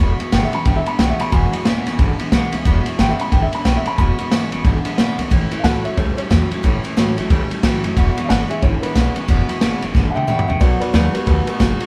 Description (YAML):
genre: rockabilly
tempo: 181 BPM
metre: 4/4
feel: swing 62% on 8ths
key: E mixolydian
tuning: A4 = 436 Hz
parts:
  - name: picked steel-string acoustic guitar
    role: accompaniment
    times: 0.0-11.9 s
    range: E2 to F#4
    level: -26 LUFS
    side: equal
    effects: none
  - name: electric guitar through a small old amp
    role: riff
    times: 0.0-11.9 s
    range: E2 to A3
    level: -28 LUFS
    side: equal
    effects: none
  - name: upright bass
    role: bass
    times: 0.0-11.8 s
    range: E1 to F#2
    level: -22 LUFS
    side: equal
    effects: none
  - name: vintage drum kit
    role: drums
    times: 0.2-11.9 s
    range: kick drum, ride cymbal, snare drum, toms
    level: -21 LUFS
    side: equal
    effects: none
  - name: dark upright piano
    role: melody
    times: 0.3-11.9 s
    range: E4 to B5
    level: -27 LUFS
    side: equal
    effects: none
room: light reverb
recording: band playing live in one room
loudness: -17 LUFS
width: mono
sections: 0.0-11.9 A section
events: drum fill 9.9-10.6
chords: 0.0 E; 5.3 A; 8.0 E; 10.6 B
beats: 0.32 0.66 0.99 | 1.32 1.65 1.99 2.32 | 2.65 2.98 3.32 3.65 | 3.98 4.31 4.64 4.98 | 5.31 5.64 5.97 6.30 | 6.63 6.96 7.30 7.63 | 7.96 8.29 8.62 8.95 | 9.28 9.61 9.94 10.27 | 10.61 10.94 11.27 11.60